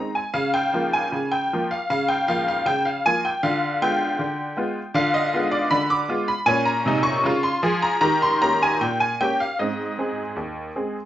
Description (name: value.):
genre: ragtime piano.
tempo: 78 BPM.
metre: 2/4.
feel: straight.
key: unclear.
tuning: A4 = 441 Hz.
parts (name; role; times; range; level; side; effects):
honky-tonk upright piano; solo; 0.0-11.1 s; Eb2 to D6; -20 LUFS; equal; none.
room: moderate studio ambience, RT60 0.5 s.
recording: nothing above 7.7 kHz.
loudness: -20 LUFS.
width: side -12 dB against mid.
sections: 0.4-11.1 A section.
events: none.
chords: 0.4 Bbm/Db; 3.4 Ddim7; 6.5 Bbm; 8.0 Eb7; 9.6 Ab.